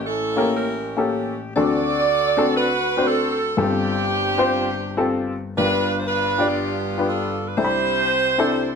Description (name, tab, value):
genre	gospel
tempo	120 BPM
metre	4/4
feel	swing 62% on 8ths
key	unclear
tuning	A4 = 439 Hz
part	warm saxophone section	melody	0.0-8.8 s	B3 to D5	-21 LUFS	right 3 dB	none
part	warm upright piano	accompaniment	0.0-8.8 s	G1 to B5	-22 LUFS	left 3 dB	none
room	moderate large studio reverb, RT60 0.9 s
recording	none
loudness	-18 LUFS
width	side -6 dB against mid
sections	0.0-8.8 A section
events	none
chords	0.0 A7b9; 1.6 D7; 3.6 G9sus4; 5.6 G7; 7.6 Cmaj9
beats	0.07 0.57 1.07 | 1.57 2.07 2.57 3.07 | 3.57 4.08 4.58 5.08 | 5.58 6.08 6.58 7.08 | 7.58 8.08 8.59